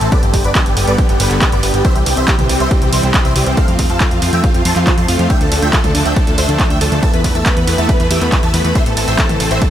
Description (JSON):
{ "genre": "uplifting trance", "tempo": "139 BPM", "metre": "4/4", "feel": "straight", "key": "unclear", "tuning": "A4 = 440 Hz", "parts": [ { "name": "big supersaw lead", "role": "melody", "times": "0.0-9.7 s", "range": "E4 to C6", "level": "-19 LUFS", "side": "equal", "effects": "ensemble chorus, sidechain pumping, tape echo" }, { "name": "filtered supersaw swell", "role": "sustained chords", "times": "0.0-9.7 s", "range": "D3 to D4", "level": "-20 LUFS", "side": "equal", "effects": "sidechain pumping" }, { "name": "plucky analog bass", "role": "bass", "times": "0.0-9.6 s", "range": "G1 to F2", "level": "-17 LUFS", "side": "equal", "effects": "sidechain pumping" }, { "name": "punchy analog drum machine", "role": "drums", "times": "0.0-9.7 s", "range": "handclaps, hi-hat, ride cymbal, toms", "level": "-19 LUFS", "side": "right 1 dB", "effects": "sidechain pumping on hats, sidechain pumping on cymbals, sidechain pumping on toms" }, { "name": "electronic kick drum", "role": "drums", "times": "0.1-9.7 s", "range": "none", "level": "-15 LUFS", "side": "equal", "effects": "none" } ], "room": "light reverb, digital ambience", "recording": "none", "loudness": "-11 LUFS", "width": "side -11 dB against mid", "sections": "0.0-9.7 A section", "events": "none", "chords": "0.1 G; 1.8 C; 3.6 F; 5.3 Dm; 7.0 Esus4; 8.8 Am", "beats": "| 0.12 0.55 0.98 1.42 | 1.85 2.28 2.71 3.14 | 3.57 4.00 4.44 4.87 | 5.30 5.73 6.16 6.59 | 7.03 7.46 7.89 8.32 | 8.75 9.19 9.62" }